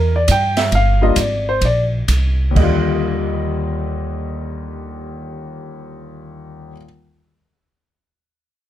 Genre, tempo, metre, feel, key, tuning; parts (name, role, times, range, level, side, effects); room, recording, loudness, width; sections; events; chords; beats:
jazz piano trio; 123-142 BPM; 4/4; swing 66% on 8ths; Eb major; A4 = 440 Hz
warm concert grand piano; melody; 0.0-6.8 s; Eb2 to G5; -20 LUFS; left 2 dB
upright bass; bass; 0.0-6.7 s; G1 to G2; -19 LUFS; right 1 dB
open jazz drum kit; drums; 0.3-2.7 s; crash cymbal, hi-hat, kick drum, ride cymbal, snare drum; -22 LUFS; right 3 dB
little or no reverb; close, detailed microphones; -15 LUFS; side -12 dB against mid
0.0-2.6 A section; 2.6-6.5 B section
slowing down 0.0-2.6
0.0 Edim; 0.7 G7(no3); 1.6 Bbsus2; 2.6 Ebmaj9
0.29 | 0.73 1.17 1.62 2.08 | 2.56 3.05 3.54 4.03 | 4.51 5.00 5.49 5.98